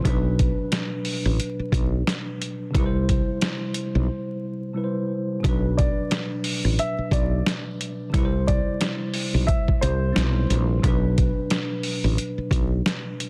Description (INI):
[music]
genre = hip hop, boom-bap hip-hop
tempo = 89 BPM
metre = 4/4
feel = swing 57% on 16ths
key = B phrygian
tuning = A4 = 440 Hz
[part]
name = bell-like tine electric piano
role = accompaniment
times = 0.0-13.3 s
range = B2 to C5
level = -31 LUFS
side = equal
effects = cassette tape, high-pass filter, low-pass filter
[part]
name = boom bap sampler-style drum kit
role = drums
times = 0.0-13.3 s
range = hi-hat, kick drum, snare drum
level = -26 LUFS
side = equal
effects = none
[part]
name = woody fretless electric bass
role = bass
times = 0.1-12.8 s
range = A1 to C2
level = -25 LUFS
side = equal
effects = none
[part]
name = dark upright piano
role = melody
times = 5.8-10.8 s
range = C5 to E5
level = -33 LUFS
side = equal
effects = high-pass filter, low-pass filter, delay
[sound]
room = light reverb, digital ambience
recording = dense, heavily limited modern master, vinyl crackle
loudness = -24 LUFS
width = mono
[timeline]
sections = 0.0-13.3 A section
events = break 4.1-5.4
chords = 0.0 Bm; 2.7 C; 5.4 Bm; 8.1 C; 10.8 Bm